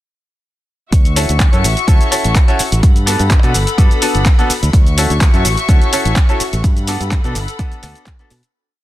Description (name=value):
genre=filtered disco house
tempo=126 BPM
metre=4/4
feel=straight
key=D major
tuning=A4 = 438 Hz
part: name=dark studio string section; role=sustained chords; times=0.9-8.5 s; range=F#4 to C#6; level=-23 LUFS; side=left 4 dB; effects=sidechain pumping
part: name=fingered electric bass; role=bass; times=0.9-8.4 s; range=G1 to B2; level=-17 LUFS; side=equal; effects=tube saturation, sidechain pumping
part: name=electronic kick drum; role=drums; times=0.9-8.2 s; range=none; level=-11 LUFS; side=equal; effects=overdrive
part: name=punchy analog drum machine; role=drums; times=0.9-8.5 s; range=handclaps, hi-hat, shaker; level=-20 LUFS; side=equal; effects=sidechain pumping on hats, sidechain pumping on perc
part: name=bright grand piano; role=accompaniment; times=1.2-8.3 s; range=B3 to A4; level=-20 LUFS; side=equal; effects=phaser, sidechain pumping
room=little or no reverb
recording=dense, heavily limited modern master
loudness=-11 LUFS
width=side -15 dB against mid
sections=0.9-8.5 drop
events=drop 0.9-8.5; fade-out 6.0-8.5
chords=0.9 Dmaj9; 2.8 Gmaj9; 4.7 Dmaj9; 6.6 Gmaj9